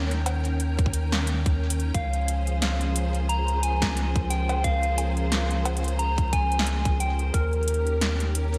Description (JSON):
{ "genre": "IDM", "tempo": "89 BPM", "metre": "4/4", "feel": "swing 56% on 16ths", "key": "Db lydian", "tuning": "A4 = 437 Hz", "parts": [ { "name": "soft struck synth lead", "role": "melody", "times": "0.0-8.6 s", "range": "Bb4 to Bb5", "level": "-32 LUFS", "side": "equal", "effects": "chorus, cassette tape, delay" }, { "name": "soft string machine", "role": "sustained chords", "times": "0.0-8.6 s", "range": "Eb3 to G5", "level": "-35 LUFS", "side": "equal", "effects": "ensemble chorus" }, { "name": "warm sub bass", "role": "bass", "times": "0.0-8.6 s", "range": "Db2 to Eb2", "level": "-28 LUFS", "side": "equal", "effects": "none" }, { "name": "electro analog drum machine", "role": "drums", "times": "0.1-8.6 s", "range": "bongos, cowbell, hi-hat, snare drum", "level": "-32 LUFS", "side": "equal", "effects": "gated reverb, delay" }, { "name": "electronic kick drum", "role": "drums", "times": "0.8-7.5 s", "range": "none", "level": "-28 LUFS", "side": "equal", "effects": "none" }, { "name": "flickering grainy texture", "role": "texture", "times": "2.8-8.6 s", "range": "Bb4", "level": "-45 LUFS", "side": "equal", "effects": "none" } ], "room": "moderate lush hall reverb, RT60 1.9 s", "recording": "bright 1980s-style digital production", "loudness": "-25 LUFS", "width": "mono", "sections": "0.0-8.6 A section", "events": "none", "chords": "0.0 Eb7; 1.9 Dbmaj7; 7.3 Eb7" }